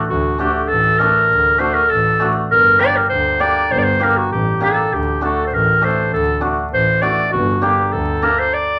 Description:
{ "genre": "klezmer", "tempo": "100 BPM", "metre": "2/4", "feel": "straight", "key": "unclear", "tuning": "A4 = 440 Hz", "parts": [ { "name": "warm clarinet", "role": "melody", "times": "0.1-8.8 s", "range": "F#4 to D5", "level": "-17 LUFS", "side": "equal", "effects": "none" }, { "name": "warm double bass", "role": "bass", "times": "0.1-8.3 s", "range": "G1 to D2", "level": "-23 LUFS", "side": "equal", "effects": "none" }, { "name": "hammered dulcimer", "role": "accompaniment", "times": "0.4-8.4 s", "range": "A3 to A4", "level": "-23 LUFS", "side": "equal", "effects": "none" } ], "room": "wet small room ambience, RT60 0.5 s", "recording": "vinyl crackle", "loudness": "-16 LUFS", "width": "mono", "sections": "0.1-8.8 A section", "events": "break 8.5", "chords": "0.1 D; 2.5 Gm; 4.9 D; 7.3 Gm", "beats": "| 0.10 0.70 | 1.30 1.91 | 2.51 3.11 | 3.71 4.32 | 4.92 5.52 | 6.12 6.72 | 7.32 7.92 | 8.52" }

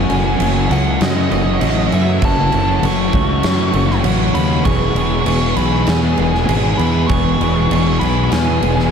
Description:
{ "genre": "rock, shoegaze and dream pop", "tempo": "98 BPM", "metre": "4/4", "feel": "straight", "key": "E major", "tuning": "A4 = 440 Hz", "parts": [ { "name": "nasal lead guitar with a parked wah", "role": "melody", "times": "0.0-8.9 s", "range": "D#5 to C#6", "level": "-22 LUFS", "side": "equal", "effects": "overdrive, tape echo" }, { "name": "direct-recorded clean electric guitar", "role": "riff", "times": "0.0-8.9 s", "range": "E2 to G#4", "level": "-21 LUFS", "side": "right 8 dB", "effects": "reverse reverb" }, { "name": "thick fuzz guitar", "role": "riff", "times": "0.0-8.9 s", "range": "E2 to F#3", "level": "-19 LUFS", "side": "left 7 dB", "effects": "distortion, analog chorus" }, { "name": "fuzz fingered electric bass", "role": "bass", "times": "0.0-8.9 s", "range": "E1 to F#2", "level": "-18 LUFS", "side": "equal", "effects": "overdrive" }, { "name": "huge arena drum kit", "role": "drums", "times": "0.1-8.9 s", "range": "crash cymbal, kick drum, snare drum", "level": "-21 LUFS", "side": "right 1 dB", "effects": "none" } ], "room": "wet huge ambient reverb, RT60 4.4 s", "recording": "dreamy mix soaked in reverb", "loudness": "-13 LUFS", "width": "side -7 dB against mid", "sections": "0.0-8.9 A section", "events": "none", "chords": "0.0 F#m7; 4.7 E", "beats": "0.39 1.00 1.61 | 2.22 2.83 3.44 4.04 | 4.65 5.26 5.87 6.48 | 7.09 7.70 8.31" }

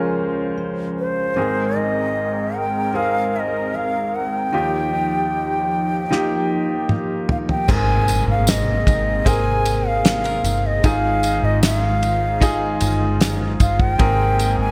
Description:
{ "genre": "pop ballad", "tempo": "76 BPM", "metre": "4/4", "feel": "straight", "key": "Ab major", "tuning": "A4 = 440 Hz", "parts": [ { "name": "reedy bansuri", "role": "melody", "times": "0.0-14.7 s", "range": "C5 to Ab5", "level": "-25 LUFS", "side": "equal", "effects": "none" }, { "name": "clear baby grand piano", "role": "accompaniment", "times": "0.0-14.7 s", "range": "Ab1 to C5", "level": "-26 LUFS", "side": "equal", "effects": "none" }, { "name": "warm analog pad", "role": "sustained chords", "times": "0.0-14.7 s", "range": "C3 to C5", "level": "-30 LUFS", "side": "equal", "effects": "chorus" }, { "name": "fingerpicked steel-string acoustic guitar", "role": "arpeggios", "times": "0.0-14.7 s", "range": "Db3 to C5", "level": "-33 LUFS", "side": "equal", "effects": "none" }, { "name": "damped 70s drum kit", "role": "drums", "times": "6.1-14.6 s", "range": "crash cymbal, kick drum, ride cymbal, snare drum, toms", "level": "-22 LUFS", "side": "equal", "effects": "gated reverb" }, { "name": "vintage muted fingered electric bass", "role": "bass", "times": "7.7-14.7 s", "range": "G1 to Ab1", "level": "-24 LUFS", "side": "equal", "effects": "none" }, { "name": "tambourine", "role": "percussion", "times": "7.7-14.6 s", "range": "none", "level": "-33 LUFS", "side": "equal", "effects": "none" }, { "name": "impact", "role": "sound effects", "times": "7.8-10.8 s", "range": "none", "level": "-32 LUFS", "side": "equal", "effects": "none" } ], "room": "light reverb, small room ambience", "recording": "bright 1980s-style digital production", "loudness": "-19 LUFS", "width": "mono", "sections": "0.0-7.7 A section; 7.7-14.7 B section", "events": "drum fill 6.1-7.7; impact 7.7-10.8", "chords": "0.0 Dbmaj7; 1.4 Abadd9; 4.5 Ebadd9; 7.7 Abadd9; 10.8 Fm7/Ab; 14.0 Abadd9", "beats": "0.58 | 1.37 2.16 2.95 3.74 | 4.53 5.32 6.11 6.89 | 7.68 8.47 9.26 10.05 | 10.84 11.63 12.42 13.21 | 14.00" }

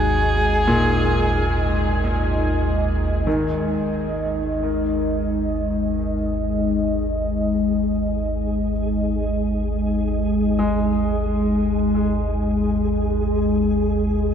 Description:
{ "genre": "dark ambient drone", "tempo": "free time", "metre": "none", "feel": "none", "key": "unclear", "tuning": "A4 = 440 Hz", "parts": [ { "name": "warm horsehead fiddle", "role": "melody", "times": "0.0-2.3 s", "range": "G#4", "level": "-24 LUFS", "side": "equal", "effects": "tape echo" }, { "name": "deep dark ambient pad", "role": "sustained chords", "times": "0.0-14.3 s", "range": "G#3 to D#5", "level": "-22 LUFS", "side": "left 1 dB", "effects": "chorus, built-in reverb" }, { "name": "deep rumbling drone", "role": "drone", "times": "0.0-14.3 s", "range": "G#1 to D#2", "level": "-24 LUFS", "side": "equal", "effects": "built-in reverb, lush chorus" }, { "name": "clear grand piano", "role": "arpeggios", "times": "0.7-14.3 s", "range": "A#2 to G#3", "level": "-27 LUFS", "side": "equal", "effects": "tape echo" }, { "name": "flickering grainy texture", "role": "texture", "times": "4.0-14.3 s", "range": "G#4", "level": "-33 LUFS", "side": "right 2 dB", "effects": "built-in reverb" } ], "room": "wet huge ambient reverb, RT60 7.6 s", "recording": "dreamy mix soaked in reverb", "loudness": "-19 LUFS", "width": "side -8 dB against mid", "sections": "0.0-3.3 A section; 3.3-14.3 B section", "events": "fade-in on synth texture 3.3-14.3; filter sweep on synth drone 3.3-14.3", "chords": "0.0 G#5", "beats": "free time" }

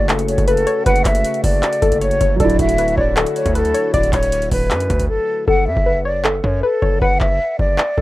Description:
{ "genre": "hip hop, trap", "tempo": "156 BPM", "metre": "4/4", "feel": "half-time", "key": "F# minor", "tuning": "A4 = 442 Hz", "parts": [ { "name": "breathy mellow silver concert flute", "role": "melody", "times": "0.0-8.0 s", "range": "A4 to F#5", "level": "-19 LUFS", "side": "equal", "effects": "low-pass filter, tape echo" }, { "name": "soft round pluck", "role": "second line", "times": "0.0-8.0 s", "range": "A4 to D5", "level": "-21 LUFS", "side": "left 3 dB", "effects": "chorus, tape echo" }, { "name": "felt-muted upright piano", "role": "accompaniment", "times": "0.0-5.5 s", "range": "C#3 to F#4", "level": "-26 LUFS", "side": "right 5 dB", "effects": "low-pass filter" }, { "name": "warm analog pad", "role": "sustained chords", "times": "0.0-5.4 s", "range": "C#3 to F#4", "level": "-28 LUFS", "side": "left 2 dB", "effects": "chorus" }, { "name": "distorted 808-style bass", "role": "bass", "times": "0.0-8.0 s", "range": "D1 to F#2", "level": "-20 LUFS", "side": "equal", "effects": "distortion" }, { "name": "booming analog drum machine", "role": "drums", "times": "0.1-8.0 s", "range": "handclaps, hi-hat, kick drum", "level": "-20 LUFS", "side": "equal", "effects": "none" } ], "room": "little or no reverb", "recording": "rough home demo mix", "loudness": "-14 LUFS", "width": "side -17 dB against mid", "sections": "0.0-5.5 A section; 5.5-8.0 B section", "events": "break 5.1-5.5; hi-hats muted 5.5-8.0", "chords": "0.0 F#m; 2.4 Dadd9; 5.5 F#m", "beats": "0.09 0.48 | 0.86 1.25 1.63 2.02 | 2.40 2.78 3.17 3.55 | 3.94 4.32 4.71 5.09 | 5.48 5.86 6.25 6.63 | 7.01 7.40 7.78" }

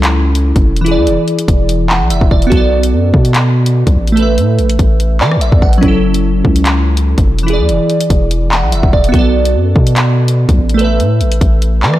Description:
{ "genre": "hip hop, drill", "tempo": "145 BPM", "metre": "4/4", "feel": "half-time", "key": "unclear", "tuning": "A4 = 444 Hz", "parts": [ { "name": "glassy digital keys", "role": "accompaniment", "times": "0.0-12.0 s", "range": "E3 to F#5", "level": "-14 LUFS", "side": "right 2 dB", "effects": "chorus" }, { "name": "long sustained 808-style bass", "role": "bass", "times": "0.0-12.0 s", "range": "E1 to E3", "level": "-12 LUFS", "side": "equal", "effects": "none" }, { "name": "drill drum kit", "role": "drums", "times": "0.0-12.0 s", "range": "handclaps, hi-hat, kick drum, rim click", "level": "-13 LUFS", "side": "equal", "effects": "none" } ], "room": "digital ambience", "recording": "blown-out, overdriven recording, overdrive", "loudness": "-9 LUFS", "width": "side -14 dB against mid", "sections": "0.0-12.0 A section", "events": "none", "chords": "0.0 F#m7; 0.9 E7; 2.5 Bm7; 4.2 Asus2; 5.8 F#m7; 7.5 E7; 9.1 Bm7; 10.8 Asus2", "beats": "0.03 0.45 | 0.86 1.28 1.69 2.10 | 2.52 2.93 3.35 3.76 | 4.17 4.59 5.00 5.41 | 5.83 6.24 6.66 7.07 | 7.48 7.90 8.31 8.72 | 9.14 9.55 9.96 10.38 | 10.79 11.21 11.62" }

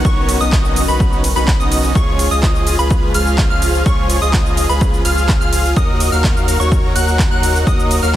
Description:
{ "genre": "EDM, festival progressive house", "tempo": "126 BPM", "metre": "4/4", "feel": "straight", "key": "unclear", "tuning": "A4 = 439 Hz", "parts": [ { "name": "warm chamber string section", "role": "sustained chords", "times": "0.0-8.2 s", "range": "D#3 to D#4", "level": "-26 LUFS", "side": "left 2 dB", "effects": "sidechain pumping" }, { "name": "plucky unison lead", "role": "arpeggios", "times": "0.0-8.2 s", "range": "B5 to F#6", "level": "-21 LUFS", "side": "equal", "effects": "sidechain pumping, digital delay" }, { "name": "dense compressed supersaw", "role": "riff", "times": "0.0-8.2 s", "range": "B3 to F#5", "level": "-20 LUFS", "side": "equal", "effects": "sidechain pumping, digital delay" }, { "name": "saturated sub bass", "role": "bass", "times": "0.0-8.2 s", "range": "B1 to D#2", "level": "-18 LUFS", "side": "equal", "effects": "sidechain pumping" }, { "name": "big-room dance drum kit", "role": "drums", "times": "0.0-8.1 s", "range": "handclaps, hi-hat, ride cymbal, shaker", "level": "-23 LUFS", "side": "right 1 dB", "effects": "overdrive" }, { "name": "electronic kick drum", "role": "drums", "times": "0.0-7.8 s", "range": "none", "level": "-16 LUFS", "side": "equal", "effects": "overdrive" } ], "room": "digital ambience", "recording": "dense, heavily limited modern master", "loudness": "-12 LUFS", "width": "side -13 dB against mid", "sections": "0.0-8.2 A section", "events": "none", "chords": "0.0 Badd9; 2.0 C#; 5.8 D#m", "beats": "| 0.05 0.53 1.00 1.48 | 1.95 2.43 2.91 3.38 | 3.86 4.33 4.81 5.29 | 5.76 6.24 6.72 7.19 | 7.67 8.14" }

